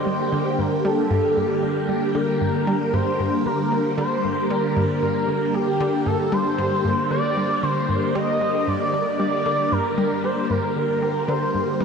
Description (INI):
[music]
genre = ambient, sequencer-driven space music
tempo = 115 BPM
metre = 4/4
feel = straight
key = G minor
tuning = A4 = 439 Hz
[part]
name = pulse-width lead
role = melody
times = 0.0-11.8 s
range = G4 to Eb5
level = -23 LUFS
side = equal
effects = chorus, analog delay
[part]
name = phased string machine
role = sustained chords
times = 0.0-11.8 s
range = D3 to G4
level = -23 LUFS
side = equal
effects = ensemble chorus, phaser
[part]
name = analog pluck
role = riff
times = 0.1-11.8 s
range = G2 to G3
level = -27 LUFS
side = equal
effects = chorus, analog delay
[sound]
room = wet lush hall reverb, RT60 3.1 s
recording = dreamy mix soaked in reverb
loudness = -19 LUFS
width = side -6 dB against mid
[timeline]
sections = 0.0-11.8 A section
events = none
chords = 0.0 Gm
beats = 0.33 | 0.85 1.37 1.89 2.41 | 2.94 3.46 3.98 4.50 | 5.02 5.54 6.07 6.59 | 7.11 7.63 8.15 8.67 | 9.20 9.72 10.24 10.76 | 11.28 11.80